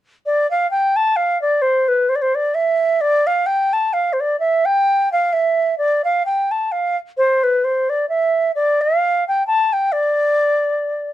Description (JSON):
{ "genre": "celtic folk", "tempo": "130 BPM", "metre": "3/4", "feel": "swing 56% on 8ths", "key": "D dorian", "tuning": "A4 = 441 Hz", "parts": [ { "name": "bright reedy baroque flute", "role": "melody", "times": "0.3-11.1 s", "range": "B4 to A5", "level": "-15 LUFS", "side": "equal", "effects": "none" } ], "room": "light reverb", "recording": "dark, warm production", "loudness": "-15 LUFS", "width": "side -13 dB against mid", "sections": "0.2-11.1 A section", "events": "none", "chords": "none" }